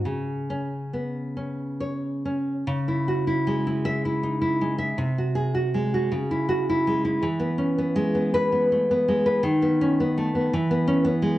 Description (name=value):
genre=romantic piece for solo classical guitar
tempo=44-57 BPM (dotted quarters)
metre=6/8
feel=rubato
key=C# minor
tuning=A4 = 439 Hz
part: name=nylon-string guitar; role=solo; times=0.1-11.4 s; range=B#2 to E5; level=-22 LUFS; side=equal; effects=none
room=moderate recital hall reverb, RT60 1.4 s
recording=worn, warbling old tape, cassette tape, warbly pitch drift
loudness=-22 LUFS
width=side -15 dB against mid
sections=0.0-2.7 A section; 2.7-11.4 B section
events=none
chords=0.0 Bsus2/C#; 2.7 C#m; 5.0 G#7/B#; 6.1 C#m; 7.2 E; 9.4 B7/D#; 10.5 E